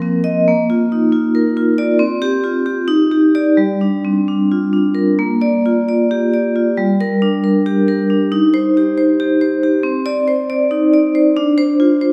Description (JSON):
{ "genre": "classical, contemporary piece for solo vibraphone", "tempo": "274 BPM (eighths)", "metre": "7/8", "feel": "rubato", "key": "G minor, Bb major from 5.2 s", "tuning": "A4 = 440 Hz", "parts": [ { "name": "vibraphone with medium hard mallets", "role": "solo", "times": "0.0-12.1 s", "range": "F3 to Eb5", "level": "-15 LUFS", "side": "equal", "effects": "none" } ], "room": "wet recital hall reverb, RT60 1.6 s", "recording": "heard from further back in the room", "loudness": "-15 LUFS", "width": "mono", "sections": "0.0-5.2 A section; 5.2-12.1 B section", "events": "none", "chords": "0.5 Bb; 2.0 C5; 2.9 Ebmaj7; 3.6 Gm7; 5.2 Bb6; 6.8 Gm; 8.3 Eb6; 9.8 Cmadd9; 11.3 Dm7" }